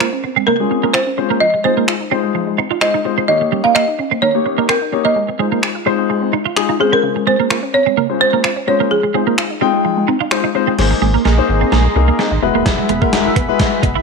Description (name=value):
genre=dance-pop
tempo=128 BPM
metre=4/4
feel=straight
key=Ab major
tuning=A4 = 440 Hz
part: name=folk marimba with hard mallets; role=melody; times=0.0-10.3 s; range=Ab4 to F5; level=-16 LUFS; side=right 1 dB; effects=slapback echo
part: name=dark grand piano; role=accompaniment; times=0.0-13.9 s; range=Ab3 to G5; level=-18 LUFS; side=left 12 dB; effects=sidechain pumping
part: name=resonant blip pluck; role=arpeggios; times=0.0-14.0 s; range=Db3 to Ab4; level=-24 LUFS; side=right 2 dB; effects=phaser, sidechain pumping, slapback echo
part: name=twelve-string electric guitar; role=riff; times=0.0-14.0 s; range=G3 to F4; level=-19 LUFS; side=right 15 dB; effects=ensemble chorus
part: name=gated 80s digital drum machine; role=drums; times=0.0-13.9 s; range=crash cymbal, finger snaps, hi-hat, kick drum, snare drum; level=-19 LUFS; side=equal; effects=gated reverb, gated reverb snare
part: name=lush unison pad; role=sustained chords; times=10.8-14.0 s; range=Ab4 to C6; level=-22 LUFS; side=right 1 dB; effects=chorus, sidechain pumping
part: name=warm sub bass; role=bass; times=10.8-14.0 s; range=Eb1 to C2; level=-17 LUFS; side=equal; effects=sidechain pumping
room=light reverb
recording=1960s-style stereo with parts hard left and right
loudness=-13 LUFS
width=side -4 dB against mid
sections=0.0-10.8 A section; 10.8-14.0 B section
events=build-up 10.8-14.0; drum fill 10.8-14.0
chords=0.0 Dbmaj7; 1.4 Fm7; 3.3 Eb7; 5.2 Ab6; 6.8 Dbmaj7; 8.9 Fm7; 10.8 Abadd9; 12.4 Eadd9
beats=0.00 0.47 0.94 | 1.41 1.88 2.35 2.82 | 3.29 3.75 4.22 4.69 | 5.16 5.63 6.10 6.57 | 7.04 7.50 7.97 8.44 | 8.91 9.38 9.85 10.32 | 10.79 11.25 11.72 12.19 | 12.66 13.13 13.60